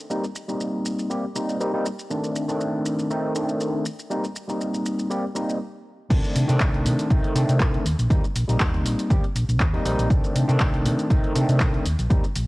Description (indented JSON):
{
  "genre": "filtered disco house",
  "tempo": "120 BPM",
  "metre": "4/4",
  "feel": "swing 53% on 16ths",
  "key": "C dorian",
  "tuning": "A4 = 440 Hz",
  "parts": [
    { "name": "overdriven tine electric piano", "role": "accompaniment", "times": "0.1-12.2 s", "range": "Eb3 to G4", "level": "-25 LUFS", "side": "equal", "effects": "phaser, sidechain pumping, low-pass filter" },
    { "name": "punchy analog drum machine", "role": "drums", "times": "0.1-12.5 s", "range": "crash cymbal, handclaps, hi-hat, shaker", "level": "-31 LUFS", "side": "equal", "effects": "sidechain pumping on perc, sidechain pumping on hats, sidechain pumping on cymbals" },
    { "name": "hollow-body short-scale fingered electric bass", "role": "bass", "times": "6.1-12.4 s", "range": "Bb1 to C3", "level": "-22 LUFS", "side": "equal", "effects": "sidechain pumping, low-pass filter" },
    { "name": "electronic kick drum", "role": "drums", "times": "6.1-12.2 s", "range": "none", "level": "-22 LUFS", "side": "equal", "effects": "none" }
  ],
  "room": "little or no reverb",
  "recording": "home recording on cassette",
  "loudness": "-21 LUFS",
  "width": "side -20 dB against mid",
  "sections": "0.0-6.1 A section; 6.1-12.5 B section",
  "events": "filter sweep on tine electric piano 0.0-6.1; stop 5.6-6.1; drop 6.1-12.5",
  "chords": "0.0 Eb6; 2.1 Cm69; 3.9 Eb6; 6.1 Cm69; 7.9 Eb6; 10.1 Cm69; 11.9 Eb6"
}